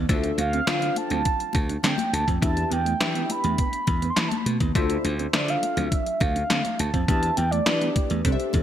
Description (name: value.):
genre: early-eighties boogie funk.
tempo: 103 BPM.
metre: 4/4.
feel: straight.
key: D dorian.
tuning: A4 = 440 Hz.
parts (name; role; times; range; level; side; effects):
mellow electric guitar; riff; 0.0-8.6 s; A3 to D4; -32 LUFS; right 7 dB; lush chorus.
slap bass; bass; 0.0-8.6 s; C2 to E3; -26 LUFS; equal; none.
funky polysynth comp; accompaniment; 0.1-8.6 s; D4 to G5; -31 LUFS; left 4 dB; chorus.
detuned 8-bit digital drum machine; drums; 0.1-8.6 s; handclaps, hi-hat, kick drum, snare drum; -25 LUFS; equal; gated reverb.
congas; percussion; 0.1-8.6 s; none; -34 LUFS; left 6 dB; none.
mellow horn-like synth lead; melody; 0.4-8.1 s; D5 to C6; -28 LUFS; right 2 dB; chorus.
room: moderate lush hall reverb, RT60 2.4 s.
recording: bright 1980s-style digital production.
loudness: -21 LUFS.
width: side -10 dB against mid.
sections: 0.0-8.6 A section.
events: none.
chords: 0.1 Dm9; 2.4 Em7; 4.8 Dm9; 7.1 Em7.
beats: | 0.09 0.68 1.26 1.84 | 2.42 3.00 3.59 4.17 | 4.75 5.33 5.92 6.50 | 7.08 7.67 8.25.